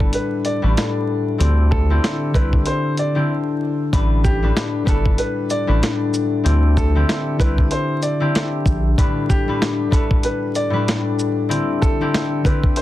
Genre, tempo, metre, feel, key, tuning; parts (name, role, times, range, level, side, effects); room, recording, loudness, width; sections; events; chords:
hip hop, boom-bap hip-hop; 95 BPM; 4/4; swing 56% on 16ths; A minor; A4 = 440 Hz
clear upright piano; melody; 0.0-12.8 s; G4 to D5; -26 LUFS; right 2 dB; tape echo
concert harp; accompaniment; 0.0-12.8 s; A2 to B4; -20 LUFS; left 2 dB; cassette tape
saturated sub bass; bass; 0.0-8.9 s; G1 to D2; -17 LUFS; equal
dusty soul sampler-style drum kit; drums; 0.0-12.8 s; hi-hat, kick drum, shaker, snare drum; -19 LUFS; equal; vintage 12-bit sampler grit
little or no reverb; dense, heavily limited modern master, vinyl crackle; -16 LUFS; side -14 dB against mid
0.0-3.9 A section; 3.9-12.8 B section
break 3.3-3.9
0.0 A9sus4; 1.4 D9sus4; 3.9 A9sus4; 6.5 D9sus4; 9.0 A9sus4; 11.5 D9sus4